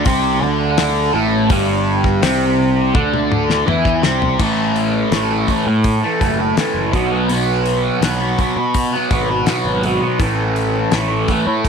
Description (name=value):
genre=psychedelic rock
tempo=83 BPM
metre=4/4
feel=straight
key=unclear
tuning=A4 = 438 Hz
part: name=fuzz guitar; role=riff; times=0.0-11.7 s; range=G2 to E4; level=-16 LUFS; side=equal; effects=distortion, phaser
part: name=fuzz picked electric bass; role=bass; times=0.0-11.7 s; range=F#1 to B2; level=-22 LUFS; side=equal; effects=overdrive
part: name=damped 70s drum kit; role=drums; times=0.1-11.7 s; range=crash cymbal, hi-hat, kick drum, snare drum, toms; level=-20 LUFS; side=left 2 dB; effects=none
room=light reverb, small room ambience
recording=1960s-style stereo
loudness=-14 LUFS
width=side -6 dB against mid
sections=0.0-4.4 A section; 4.4-11.7 B section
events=drum fill 3.0-4.4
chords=0.0 A5; 6.9 B5; 10.2 A5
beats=0.06 0.78 | 1.50 2.23 2.95 3.68 | 4.40 5.13 5.85 6.58 | 7.30 8.03 8.76 9.48 | 10.21 10.93 11.65